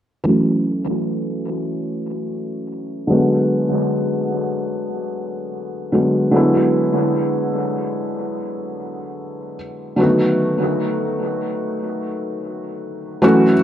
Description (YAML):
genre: R&B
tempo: free time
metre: none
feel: none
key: F# minor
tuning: A4 = 440 Hz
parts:
  - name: felt-muted upright piano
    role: accompaniment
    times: 0.2-13.6 s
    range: D3 to F#4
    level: -18 LUFS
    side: equal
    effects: low-pass filter, analog delay
room: wet spring reverb, RT60 1.7 s, studio reverb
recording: echo-heavy mix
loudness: -17 LUFS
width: side -10 dB against mid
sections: 0.3-13.2 A section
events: filter sweep on felt piano 0.3-13.2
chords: 0.3 F#m7; 3.1 G#m7b5; 6.3 E9; 10.0 B7